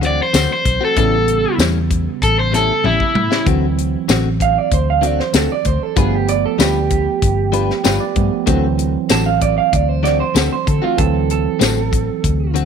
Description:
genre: straight-eighth soul blues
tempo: 96 BPM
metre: 4/4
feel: straight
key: D mixolydian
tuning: A4 = 440 Hz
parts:
  - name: overdriven tine electric piano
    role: accompaniment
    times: 0.0-12.7 s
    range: C#3 to G5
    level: -23 LUFS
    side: right 14 dB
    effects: none
  - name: direct-recorded clean electric guitar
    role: stabs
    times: 0.0-12.7 s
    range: A2 to B4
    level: -23 LUFS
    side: left 12 dB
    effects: lush chorus, tape echo
  - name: vintage muted fingered electric bass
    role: bass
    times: 0.0-12.7 s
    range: G1 to D3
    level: -19 LUFS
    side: left 2 dB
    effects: none
  - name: tight funk drum kit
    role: drums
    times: 0.0-12.7 s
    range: hi-hat, kick drum, snare drum, tambourine, toms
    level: -18 LUFS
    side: left 2 dB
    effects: none
  - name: crunchy overdriven guitar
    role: melody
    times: 0.1-3.5 s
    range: E4 to D5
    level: -17 LUFS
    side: left 1 dB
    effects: none
  - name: electric guitar through a small old amp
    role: second line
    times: 4.4-12.5 s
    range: F4 to A5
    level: -19 LUFS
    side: right 11 dB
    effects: none
room: light reverb, small room ambience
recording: 1960s-style stereo with parts hard left and right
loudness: -14 LUFS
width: side -7 dB against mid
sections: 0.0-3.5 A section; 3.5-12.7 B section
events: drum fill 2.8-3.5; clean electric guitar solo 3.5-12.7; tine electric piano fill 7.5-8.5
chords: 0.0 D7; 1.0 A7; 3.5 D7; 6.0 G7; 8.5 D7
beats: 0.34 | 0.96 1.59 2.21 2.84 | 3.46 4.09 4.71 5.34 | 5.96 6.59 7.22 7.84 | 8.47 9.10 9.73 10.35 | 10.98 11.61 12.24

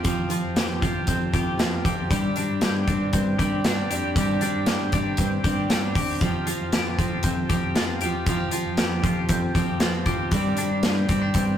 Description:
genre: jangly indie pop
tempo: 117 BPM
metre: 4/4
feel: straight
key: unclear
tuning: A4 = 439 Hz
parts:
  - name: picked steel-string acoustic guitar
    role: accompaniment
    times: 0.0-11.6 s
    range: F3 to G4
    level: -29 LUFS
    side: right 4 dB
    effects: none
  - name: twelve-string electric guitar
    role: arpeggios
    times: 0.0-11.6 s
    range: F3 to G4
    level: -28 LUFS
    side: left 4 dB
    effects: harmonic tremolo
  - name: big rock drum kit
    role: drums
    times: 0.0-11.5 s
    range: hi-hat, kick drum, snare drum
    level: -25 LUFS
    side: equal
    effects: none
  - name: tine electric piano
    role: bass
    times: 0.1-11.6 s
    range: E2 to G2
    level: -28 LUFS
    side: equal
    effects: medium stereo tremolo
room: moderate stone room reverb, RT60 1.0 s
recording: rough rehearsal-room recording, tube saturation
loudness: -21 LUFS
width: side -10 dB against mid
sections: 0.0-11.6 A section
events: none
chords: 0.0 Fsus2; 2.1 Csus2; 6.2 Fsus2; 10.3 Csus2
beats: | 0.05 0.56 1.08 1.59 | 2.11 2.62 3.13 3.65 | 4.16 4.67 5.19 5.70 | 6.21 6.73 7.24 7.75 | 8.27 8.78 9.29 9.81 | 10.32 10.83 11.34

